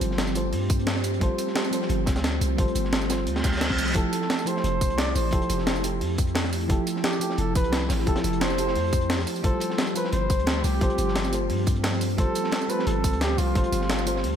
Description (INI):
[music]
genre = liquid drum and bass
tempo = 175 BPM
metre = 4/4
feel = straight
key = unclear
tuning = A4 = 440 Hz
[part]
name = mellow FM electric piano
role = accompaniment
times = 0.0-14.4 s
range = F3 to C5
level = -31 LUFS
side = equal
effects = chorus, cassette tape, ping-pong delay
[part]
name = ethereal airy pad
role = sustained chords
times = 0.0-14.4 s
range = F3 to G4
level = -30 LUFS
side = right 1 dB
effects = ensemble chorus, built-in reverb, sidechain pumping
[part]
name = long sustained 808-style bass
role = bass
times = 0.0-14.4 s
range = F1 to G2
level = -28 LUFS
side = equal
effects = none
[part]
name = breakbeat sampler-style drum kit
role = drums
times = 0.0-14.3 s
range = hi-hat, snare drum, tambourine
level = -30 LUFS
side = equal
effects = none
[part]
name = crunchy breakbeat drum kit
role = drums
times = 0.0-14.3 s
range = hi-hat, snare drum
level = -35 LUFS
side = equal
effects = high-pass filter on hats, high-pass filter on snare, high-pass filter on room
[part]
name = electronic kick drum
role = drums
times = 0.7-13.6 s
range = none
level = -25 LUFS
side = equal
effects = none
[part]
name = reverse cymbal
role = sound effects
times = 3.4-4.0 s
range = none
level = -30 LUFS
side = right 1 dB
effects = none
[part]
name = mellow flugelhorn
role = melody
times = 4.0-14.4 s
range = F4 to D5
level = -30 LUFS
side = equal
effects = ping-pong delay
[sound]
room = moderate plate reverb, RT60 2.2 s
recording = dreamy mix soaked in reverb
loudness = -22 LUFS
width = side -8 dB against mid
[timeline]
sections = 0.0-14.4 A section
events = reverse cymbal 3.4-4.0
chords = 0.0 G9sus4; 4.0 Fmaj9; 9.3 G9sus4